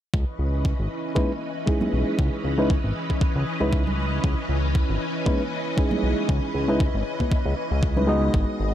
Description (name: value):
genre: nu-disco, nu disco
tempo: 117 BPM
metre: 4/4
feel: swing 56% on 16ths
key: C# minor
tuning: A4 = 439 Hz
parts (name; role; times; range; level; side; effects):
- string machine, full ensemble; sustained chords; 0.1-8.7 s; E3 to D#5; -29 LUFS; left 1 dB; phaser, ensemble chorus, sidechain pumping
- fat analog bass; bass; 0.1-8.7 s; G#1 to C#2; -25 LUFS; equal; none
- electronic kick drum; drums; 0.1-8.5 s; none; -23 LUFS; equal; overdrive
- reed electric piano; accompaniment; 1.2-8.7 s; G#3 to D#5; -26 LUFS; equal; sidechain pumping, tape echo
- congas; percussion; 1.2-8.1 s; none; -32 LUFS; right 1 dB; none
room: little or no reverb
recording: none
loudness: -21 LUFS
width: side -11 dB against mid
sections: 0.1-8.7 A section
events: filter sweep on analog synth bass 0.1-8.7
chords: 0.1 C#m9